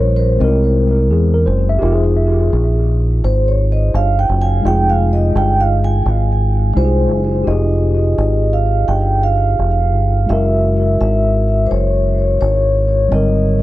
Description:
hip hop, jazz-hop; 85 BPM; 4/4; swing 65% on 16ths; F minor; A4 = 437 Hz
vibraphone with soft mallets; melody; 0.0-13.6 s; C5 to Ab5; -19 LUFS; right 1 dB; tape echo
mellow tine electric piano; accompaniment; 0.0-13.6 s; D3 to E5; -19 LUFS; left 1 dB; slow stereo tremolo, tape echo
deep dub fingered electric bass; bass; 0.0-13.6 s; F1 to E2; -14 LUFS; equal
light reverb, small room reverb; echo-heavy mix; -12 LUFS; side -16 dB against mid
0.0-7.5 A section; 7.5-13.6 B section
vibraphone solo 0.0-7.5
0.4 Caug7; 1.8 Fm9; 10.3 Gb9; 13.1 Abmaj9#11

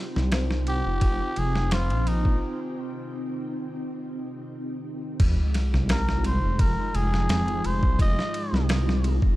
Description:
trip hop; 86 BPM; 4/4; swing 53% on 16ths; F minor; A4 = 436 Hz
string machine, cellos; sustained chords; 0.0-9.4 s; Ab3 to G5; -32 LUFS; equal; ensemble chorus
large celesta; arpeggios; 0.0-5.2 s; Eb4 to C5; -38 LUFS; left 2 dB; dub echo
dark detuned saw bass; bass; 0.2-9.4 s; F1 to F2; -25 LUFS; equal; tube saturation
dusty soul sampler-style drum kit; drums; 0.2-9.4 s; crash cymbal, kick drum, ride cymbal, snare drum; -26 LUFS; equal
trumpet with cup mute; melody; 0.7-8.7 s; Eb4 to Eb5; -31 LUFS; equal; dub echo
sub drop; sound effects; 5.3-8.0 s; -28 LUFS; equal
little or no reverb; dark, warm production; -23 LUFS; side -17 dB against mid
0.0-5.2 A section; 5.2-9.4 B section
break 2.4-5.2; impact 5.2-8.0
0.0 Cm/F; 5.2 Fm7

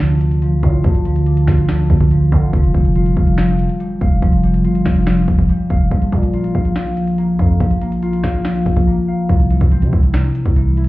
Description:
hip hop, trap; 142 BPM; 4/4; half-time; A4 = 442 Hz
concert harp; accompaniment; 0.0-10.9 s; C3 to F5; -16 LUFS; equal
growling 808-style bass; bass; 0.0-10.9 s; F1 to D3; -17 LUFS; equal
trap drum kit; drums; 0.0-10.9 s; finger snaps, hi-hat, kick drum, snare drum; -16 LUFS; equal
little or no reverb; heard muffled through a wall, club reverb, EQ; -13 LUFS; side -18 dB against mid
0.0-9.3 A section; 9.3-10.9 B section
drums muted 8.9-9.3
0.0 Dm; 2.5 Fsus2; 5.9 Bb5; 9.3 C

